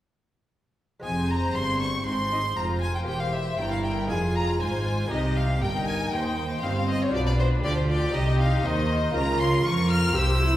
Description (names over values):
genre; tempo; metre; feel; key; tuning
classical, baroque-style concerto movement with solo episodes; 118 BPM; 4/4; straight; F minor; A4 = 440 Hz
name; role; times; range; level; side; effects
clear chamber violin section; melody; 1.0-10.6 s; C5 to F6; -33 LUFS; left 3 dB; none
rich violin; melody; 1.0-10.6 s; C5 to F6; -30 LUFS; equal; none
warm chamber violin section; second line; 1.0-10.6 s; G4 to C5; -34 LUFS; left 3 dB; none
lute; accompaniment; 1.0-10.6 s; Eb2 to C5; -35 LUFS; equal; none
rich chamber viola section; accompaniment; 1.0-10.6 s; C4 to G4; -31 LUFS; equal; none
warm chamber cello section; bass; 1.0-10.6 s; Eb2 to F3; -28 LUFS; right 1 dB; none
warm symphonic double bass section; bass; 1.0-10.6 s; E1 to F2; -28 LUFS; right 1 dB; none
room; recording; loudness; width
wet recital hall reverb, RT60 1.5 s; heard from further back in the room; -22 LUFS; side -13 dB against mid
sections
1.0-10.6 A section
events
none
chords
1.0 Fm; 3.1 C7/E; 4.1 Fm; 5.1 Cm; 7.1 G7/B; 8.1 Cm; 9.2 Bbm/Db